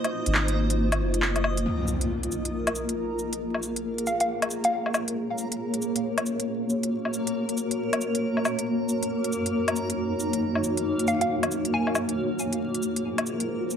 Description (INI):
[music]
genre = future garage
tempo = 137 BPM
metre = 4/4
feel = swing 62% on 16ths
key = Bb minor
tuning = A4 = 437 Hz
[part]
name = granular cloud pad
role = sustained chords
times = 0.0-13.8 s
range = Gb2 to Db5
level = -27 LUFS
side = equal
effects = built-in reverb, vintage 12-bit sampler grit
[part]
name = organic electronic drum kit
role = drums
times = 0.0-13.8 s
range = cabasa, handclaps, hi-hat, woodblock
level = -28 LUFS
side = left 1 dB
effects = none
[part]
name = backwards swelling texture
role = texture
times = 0.0-13.8 s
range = Bb3 to Eb5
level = -34 LUFS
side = equal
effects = built-in reverb
[part]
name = soft dub sub bass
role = bass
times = 0.3-1.6 s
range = Gb1 to Ab1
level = -26 LUFS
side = equal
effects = none
[part]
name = impact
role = sound effects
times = 1.7-3.4 s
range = none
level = -32 LUFS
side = equal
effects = none
[part]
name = hollow square pluck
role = melody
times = 4.1-4.9, 11.1-12.1 s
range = F5 to Ab5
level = -28 LUFS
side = equal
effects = chorus, cassette tape, digital delay
[sound]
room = moderate digital room reverb, RT60 1.2 s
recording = vinyl crackle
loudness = -24 LUFS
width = side -8 dB against mid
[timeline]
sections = 0.0-1.7 A section; 1.7-13.8 B section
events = impact 1.7-3.4; filter sweep on ambient pad 1.7-13.8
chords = 0.0 Ab13; 1.7 Bbm7; 5.2 Gbmaj7; 8.7 Ebm7/Gb; 12.2 Ab13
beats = 0.35 0.79 1.22 | 1.66 2.10 2.54 2.98 | 3.41 3.85 4.29 4.73 | 5.17 5.60 6.04 6.48 | 6.92 7.36 7.79 8.23 | 8.67 9.11 9.54 9.98 | 10.42 10.86 11.30 11.73 | 12.17 12.61 13.05 13.49